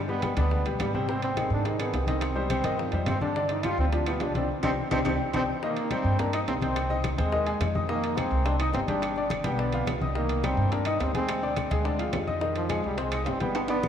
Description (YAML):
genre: latin, salsa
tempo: 212 BPM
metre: 4/4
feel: straight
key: C harmonic minor, C minor from 5.6 s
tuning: A4 = 440 Hz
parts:
  - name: bright baby grand piano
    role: accompaniment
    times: 0.0-13.9 s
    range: C3 to Eb6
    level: -30 LUFS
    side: left 2 dB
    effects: none
  - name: upright bass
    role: bass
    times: 0.0-13.9 s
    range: G1 to Ab2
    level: -30 LUFS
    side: equal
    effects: none
  - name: bright trombone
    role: melody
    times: 0.1-13.9 s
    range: F3 to F4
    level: -30 LUFS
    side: right 1 dB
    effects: none
  - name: bongos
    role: percussion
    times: 0.1-13.9 s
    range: none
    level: -40 LUFS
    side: left 8 dB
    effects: none
  - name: congas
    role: percussion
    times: 0.1-13.9 s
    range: none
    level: -36 LUFS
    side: left 2 dB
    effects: none
  - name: claves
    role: percussion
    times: 0.2-13.9 s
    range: none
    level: -43 LUFS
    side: left 1 dB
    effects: none
  - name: timbales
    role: percussion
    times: 0.2-13.8 s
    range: none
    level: -37 LUFS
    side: right 5 dB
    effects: none
room: wet cathedral reverb, RT60 5.7 s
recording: in a vast, echoing space, small room ambience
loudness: -25 LUFS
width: side -8 dB against mid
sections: 0.0-5.6 A section; 5.6-13.9 B section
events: band accent 4.5-5.6; drum fill 5.2-5.6, 13.5-13.9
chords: 0.0 G; 1.1 Ab; 2.2 Cm; 3.4 G5; 4.5 Cmadd9; 5.6 Cm7; 6.8 Ab/C; 7.9 Fm7; 9.0 G7; 10.2 Cm7; 11.3 Dm7b5; 12.4 Fm7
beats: 0.23 0.52 0.80 | 1.08 1.37 1.65 1.94 | 2.22 2.50 2.79 3.07 | 3.36 3.64 3.92 4.21 | 4.49 4.78 5.06 5.34 | 5.63 5.91 6.19 6.48 | 6.76 7.04 7.33 7.61 | 7.89 8.18 8.46 8.74 | 9.02 9.31 9.59 9.87 | 10.16 10.44 10.72 11.00 | 11.29 11.57 11.85 12.13 | 12.42 12.70 12.98 13.27 | 13.55 13.83